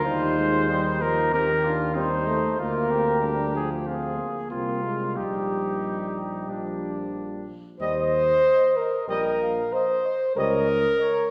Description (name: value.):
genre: classical, brass quintet.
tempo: 94 BPM.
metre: 4/4.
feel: straight.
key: Eb major.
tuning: A4 = 440 Hz.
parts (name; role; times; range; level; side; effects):
mellow trumpet; melody; 0.0-11.3 s; F4 to G5; -30 LUFS; equal; none.
warm trumpet; second line; 0.0-10.6 s; D4 to Eb5; -35 LUFS; equal; none.
clear French horn; accompaniment; 0.0-11.3 s; G3 to C5; -27 LUFS; equal; none.
clear trombone; accompaniment; 0.0-10.6 s; Eb3 to Bb3; -36 LUFS; equal; none.
mellow tuba; bass; 0.0-10.9 s; Bb1 to Eb2; -34 LUFS; equal; none.
room: wet scoring stage reverb, RT60 1.6 s.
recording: heard from further back in the room.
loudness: -24 LUFS.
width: mono.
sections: 0.0-7.8 A section; 7.8-11.3 B section.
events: none.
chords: 0.1 Eb; 1.3 F7/Eb; 2.6 Bb7/D; 5.2 Eb/Bb; 6.5 Bb; 7.8 Eb; 10.4 Eb7/Db.